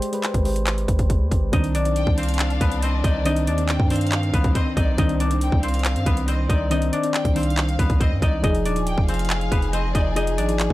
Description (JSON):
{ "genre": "hip hop, trap", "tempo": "139 BPM", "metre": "4/4", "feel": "half-time", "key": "C harmonic minor", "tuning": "A4 = 440 Hz", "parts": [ { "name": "soft electric-piano-like synth keys", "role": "accompaniment", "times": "0.0-10.7 s", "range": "Eb3 to D5", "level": "-26 LUFS", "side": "equal", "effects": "chorus, low-pass filter" }, { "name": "trap drum kit", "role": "drums", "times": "0.0-10.7 s", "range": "handclaps, hi-hat, kick drum", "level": "-22 LUFS", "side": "equal", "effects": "none" }, { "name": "long sustained 808-style bass", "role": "bass", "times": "0.3-10.7 s", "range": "Eb1 to G2", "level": "-23 LUFS", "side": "equal", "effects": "none" }, { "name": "guzheng", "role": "melody", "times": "1.5-10.7 s", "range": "B3 to Eb5", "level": "-27 LUFS", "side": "left 3 dB", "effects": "low-pass filter" }, { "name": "warm symphonic string section", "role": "sustained chords", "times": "1.5-10.7 s", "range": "Eb3 to Ab4", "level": "-33 LUFS", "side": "left 1 dB", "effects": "none" }, { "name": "warm studio violin section", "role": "second line", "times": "2.0-10.2 s", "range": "D5 to G5", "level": "-32 LUFS", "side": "left 1 dB", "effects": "tape echo" } ], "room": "studio ambience", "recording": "dry, gritty hardware recording, transformer saturation", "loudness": "-18 LUFS", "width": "side -16 dB against mid", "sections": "0.0-1.5 A section; 1.5-10.7 B section", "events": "none", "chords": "0.0 Abmaj7; 1.5 Cmadd9; 8.4 Fm7" }